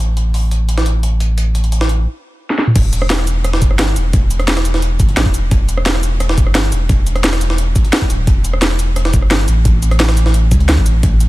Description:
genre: liquid drum and bass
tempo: 174 BPM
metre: 4/4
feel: straight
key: E dorian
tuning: A4 = 443 Hz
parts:
  - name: warm sub bass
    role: bass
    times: 0.0-11.3 s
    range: D1 to C#2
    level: -14 LUFS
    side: equal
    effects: none
  - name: jungle sampler-style drum kit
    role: drums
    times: 0.0-11.3 s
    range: hi-hat, snare drum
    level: -22 LUFS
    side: equal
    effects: high-pass filter on hats, high-pass filter on snare, high-pass filter on room
  - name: drum and bass drum kit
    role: drums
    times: 2.5-11.3 s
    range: crash cymbal, hi-hat, rim click, shaker, snare drum, toms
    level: -19 LUFS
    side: equal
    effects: overdrive, low-pass filter on snare, low-pass filter on toms, low-pass filter on hats, low-pass filter on cymbals, low-pass filter on perc, low-pass filter on room
  - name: electronic kick drum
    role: drums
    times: 2.8-11.1 s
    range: none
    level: -13 LUFS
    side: equal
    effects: none
room: little or no reverb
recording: lossy compression artefacts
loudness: -12 LUFS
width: side -18 dB against mid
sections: 0.0-2.8 A section; 2.8-11.3 B section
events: drum fill 2.5; drop 2.8-11.3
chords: none

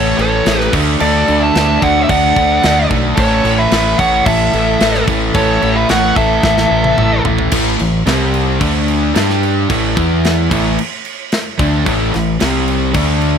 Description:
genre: hard rock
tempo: 110 BPM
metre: 4/4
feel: straight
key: unclear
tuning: A4 = 442 Hz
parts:
  - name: high-gain lead guitar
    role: melody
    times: 0.0-7.2 s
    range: C#5 to A5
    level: -16 LUFS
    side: equal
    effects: distortion
  - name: nasal lead guitar with a parked wah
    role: second line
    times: 0.0-7.2 s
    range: A4 to E5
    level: -21 LUFS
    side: right 2 dB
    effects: overdrive
  - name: crunchy overdriven guitar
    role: riff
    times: 0.0-13.4 s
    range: A2 to G4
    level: -19 LUFS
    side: right 11 dB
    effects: spring reverb
  - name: overdriven semi-hollow guitar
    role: riff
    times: 0.0-13.4 s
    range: A2 to G4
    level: -21 LUFS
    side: equal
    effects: none
  - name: sludgy distorted guitar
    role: riff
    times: 0.0-13.4 s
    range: A2 to G4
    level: -19 LUFS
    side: left 13 dB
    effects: overdrive
  - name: growling fingered electric bass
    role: bass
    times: 0.0-13.4 s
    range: A1 to G2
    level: -19 LUFS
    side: equal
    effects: overdrive
  - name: tight metal drum kit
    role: drums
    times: 0.2-13.3 s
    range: crash cymbal, kick drum, snare drum, toms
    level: -19 LUFS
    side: equal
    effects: none
room: light reverb, studio reverb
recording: none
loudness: -11 LUFS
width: side -7 dB against mid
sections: 0.0-7.5 A section; 7.5-13.4 B section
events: drum fill 6.4-7.5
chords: 0.0 A; 0.7 D; 3.2 A; 7.5 A5; 8.1 C5; 8.6 D5; 9.2 G5; 9.7 A5; 10.0 E5; 10.5 A5; 12.4 C5

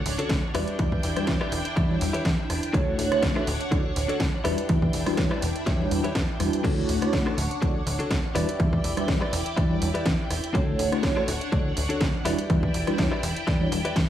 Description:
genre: filtered disco house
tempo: 123 BPM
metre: 4/4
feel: swing 54% on 16ths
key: unclear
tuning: A4 = 440 Hz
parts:
  - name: string machine, full ensemble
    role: sustained chords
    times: 0.0-14.1 s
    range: D4 to G5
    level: -32 LUFS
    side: equal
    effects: phaser, ensemble chorus, sidechain pumping
  - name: plucky analog bass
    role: bass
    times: 0.1-14.1 s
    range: D1 to E2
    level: -28 LUFS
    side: equal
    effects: sidechain pumping
  - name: house drum kit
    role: drums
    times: 0.1-14.1 s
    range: crash cymbal, hi-hat, rim click, snare drum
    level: -32 LUFS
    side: equal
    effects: overdrive, sidechain pumping on hats, sidechain pumping on cymbals
  - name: direct-recorded clean electric guitar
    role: riff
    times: 0.2-14.0 s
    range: D4 to E5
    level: -32 LUFS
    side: left 2 dB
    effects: vintage 12-bit sampler grit, sidechain pumping
  - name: electronic kick drum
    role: drums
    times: 0.3-14.1 s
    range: none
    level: -26 LUFS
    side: equal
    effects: overdrive
  - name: mellow tine electric piano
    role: accompaniment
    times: 0.5-13.8 s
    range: G3 to D5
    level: -28 LUFS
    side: right 1 dB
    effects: medium stereo tremolo, phaser, sidechain pumping
room: light reverb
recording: studio reverb, faint mains hum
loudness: -22 LUFS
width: side -11 dB against mid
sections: 0.0-14.1 A section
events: none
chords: 0.0 Dmaj7; 0.5 Em7; 2.7 Dmaj7; 4.5 Em7; 6.6 Dmaj7; 8.4 Em7; 10.5 Dmaj7; 12.3 Em7

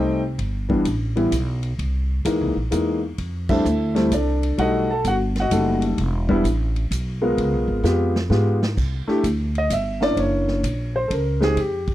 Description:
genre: jazz piano trio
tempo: 129 BPM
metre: 3/4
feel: swing 66% on 8ths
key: unclear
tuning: A4 = 443 Hz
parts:
  - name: warm grand piano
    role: melody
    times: 0.0-11.9 s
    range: E3 to A5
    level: -21 LUFS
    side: left 1 dB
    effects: none
  - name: upright bass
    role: bass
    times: 0.0-11.9 s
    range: E1 to Ab2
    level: -23 LUFS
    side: equal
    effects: none
  - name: vintage drum kit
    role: drums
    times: 0.4-11.9 s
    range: crash cymbal, hi-hat, kick drum, ride cymbal, snare drum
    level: -29 LUFS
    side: equal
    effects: none
room: small room ambience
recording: dry, close 1970s-style studio recording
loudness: -19 LUFS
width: side -14 dB against mid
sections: 0.0-8.8 A section; 8.8-11.9 B section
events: band accent 3.4; drum fill 7.8-8.8; grand piano solo 8.8-11.9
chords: 0.4 Em; 1.8 C7alt; 3.2 F69; 4.6 B7b13; 6.0 E5; 7.4 Db7#11 (rootless); 8.8 Cadd9; 10.2 F#7#11

